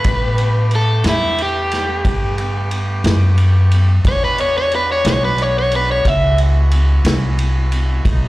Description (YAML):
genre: slow blues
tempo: 60 BPM (dotted quarters)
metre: 12/8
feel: straight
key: unclear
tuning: A4 = 440 Hz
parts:
  - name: overdriven semi-hollow guitar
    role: melody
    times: 0.0-6.4 s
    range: E4 to E5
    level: -17 LUFS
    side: equal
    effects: spring reverb, slapback echo
  - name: warm horn section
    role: sustained chords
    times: 0.0-8.3 s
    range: G#3 to G4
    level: -28 LUFS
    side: left 1 dB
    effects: none
  - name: upright bass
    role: bass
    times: 0.0-8.3 s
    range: B1 to A2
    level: -16 LUFS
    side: equal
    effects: none
  - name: vintage drum kit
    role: drums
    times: 0.0-8.2 s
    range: kick drum, ride cymbal, snare drum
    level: -21 LUFS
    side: equal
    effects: none
room: little or no reverb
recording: live gig heard through the venue's PA, club reverb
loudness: -13 LUFS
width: side -18 dB against mid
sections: 0.0-8.3 A section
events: overdriven electric guitar solo 0.0-8.3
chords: 0.0 Asus2; 4.0 E9